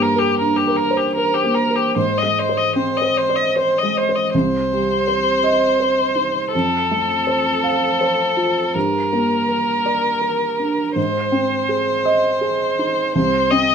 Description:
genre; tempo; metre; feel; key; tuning
neoclassical piano and strings; 81 BPM; 3/4; rubato; C minor; A4 = 445 Hz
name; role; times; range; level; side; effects
muted violin; melody; 0.0-13.7 s; G4 to Eb5; -18 LUFS; left 1 dB; none
felt-muted upright piano; accompaniment; 0.0-13.7 s; C2 to F5; -19 LUFS; right 1 dB; none
room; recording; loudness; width
moderate studio reverb, RT60 0.6 s; band playing live in one room; -16 LUFS; side -7 dB against mid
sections
0.0-4.3 A section; 4.3-13.7 B section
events
none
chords
0.0 Gm; 2.0 Ab; 4.3 Cm; 6.5 F; 8.8 Gm; 11.0 Ab; 13.2 Cm

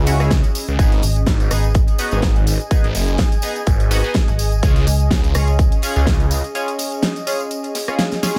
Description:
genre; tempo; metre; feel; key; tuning
bass house; 125 BPM; 4/4; swing 55% on 16ths; unclear; A4 = 439 Hz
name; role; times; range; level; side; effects
phased detuned saw bass; bass; 0.0-6.4 s; F#1 to C#2; -20 LUFS; equal; phaser, sidechain pumping
warbly tape-like pad; texture; 0.0-8.4 s; C#4 to G#5; -30 LUFS; equal; chorus, built-in reverb, sidechain pumping
band-passed chord stab; stabs; 0.1-8.4 s; B3 to G#4; -29 LUFS; equal; phaser, subtle chorus, sidechain pumping, tape echo
big-room dance drum kit; drums; 0.1-8.4 s; hi-hat, rim click, snare drum; -26 LUFS; equal; studio ambience
crisp fusion drum kit; drums; 0.1-8.4 s; hi-hat, snare drum; -39 LUFS; equal; none
tambourine; percussion; 0.1-8.3 s; none; -33 LUFS; equal; none
electronic kick drum; drums; 0.3-6.2 s; none; -19 LUFS; equal; studio ambience
metallic FM bass; bass; 1.0-5.7 s; G#1 to C#2; -19 LUFS; equal; overdrive, sidechain pumping
room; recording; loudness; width
small room ambience; none; -18 LUFS; mono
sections
0.0-8.4 A section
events
break 6.5-8.4; drum fill 8.1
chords
0.0 C#m; 0.8 G#m; 4.6 C#

